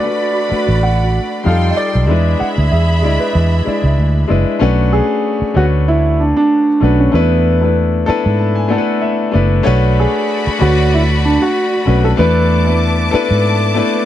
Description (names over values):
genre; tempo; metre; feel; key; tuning
lush 1970s-style soul; 95 BPM; 4/4; swing 54% on 16ths; B dorian; A4 = 440 Hz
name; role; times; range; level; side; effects
dark grand piano; melody; 0.0-12.8 s; B3 to F#5; -17 LUFS; right 1 dB; none
warm studio string section; second line; 0.0-4.6, 9.7-14.1 s; F#4 to D6; -20 LUFS; right 2 dB; tape echo
clear grand piano; accompaniment; 0.0-14.1 s; G3 to B5; -17 LUFS; left 4 dB; none
vintage muted fingered electric bass; bass; 0.5-13.8 s; F#1 to G#2; -14 LUFS; right 1 dB; none
room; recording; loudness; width
little or no reverb; dry, close 1970s-style studio recording; -11 LUFS; side -12 dB against mid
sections
0.0-4.6 A section; 4.6-14.1 B section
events
grand piano fill 7.8-9.7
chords
0.0 Bm7; 1.5 F9; 2.1 E7; 4.6 Bm9; 7.1 E7sus4; 9.7 Bm9; 12.2 E7sus4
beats
0.19 0.82 1.46 | 2.09 2.72 3.35 3.98 | 4.62 5.25 5.88 6.51 | 7.14 7.77 8.40 9.03 | 9.66 10.29 10.92 11.55 | 12.19 12.82 13.45